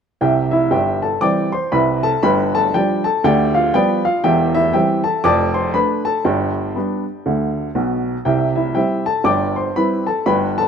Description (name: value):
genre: jazz, stride piano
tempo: 119 BPM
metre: 4/4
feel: swing 61% on 8ths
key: C major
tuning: A4 = 440 Hz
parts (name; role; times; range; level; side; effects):
- warm upright piano; solo; 0.2-10.7 s; E1 to D6; -15 LUFS; equal; none
room: moderate echo chamber reverb, RT60 2.1 s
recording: none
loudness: -15 LUFS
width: side -7 dB against mid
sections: 0.2-10.7 A section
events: none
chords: 0.2 C; 2.2 G7; 3.2 G7/D; 4.2 C/E; 5.2 Dm/F; 6.2 G; 8.3 C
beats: | 0.20 0.71 1.21 1.71 | 2.22 2.72 3.23 3.73 | 4.23 4.74 5.24 5.74 | 6.25 6.75 7.25 7.76 | 8.26 8.76 9.27 9.77 | 10.27